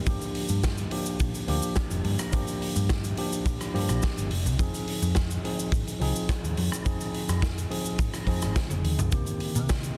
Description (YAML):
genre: nu-disco, nu disco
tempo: 106 BPM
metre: 4/4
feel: straight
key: unclear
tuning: A4 = 445 Hz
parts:
  - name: tine electric piano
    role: accompaniment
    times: 0.0-9.9 s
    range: Eb3 to Ab4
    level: -34 LUFS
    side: equal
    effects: vintage 12-bit sampler grit, sidechain pumping, tape echo
  - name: hollow-body short-scale picked electric bass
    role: bass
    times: 0.1-9.9 s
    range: F1 to C3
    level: -31 LUFS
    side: equal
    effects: none
  - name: kick drum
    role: drums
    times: 0.1-9.8 s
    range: none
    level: -32 LUFS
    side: equal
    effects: none
  - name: raw garage drum kit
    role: drums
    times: 0.1-9.9 s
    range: cabasa, hi-hat, rim click, snare drum, toms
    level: -36 LUFS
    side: equal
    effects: none
room: studio reverb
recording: dense, heavily limited modern master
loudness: -28 LUFS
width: mono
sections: 0.0-10.0 A section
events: drum fill 8.6-9.1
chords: 0.1 Gm7; 4.3 Fm7; 9.1 Cm7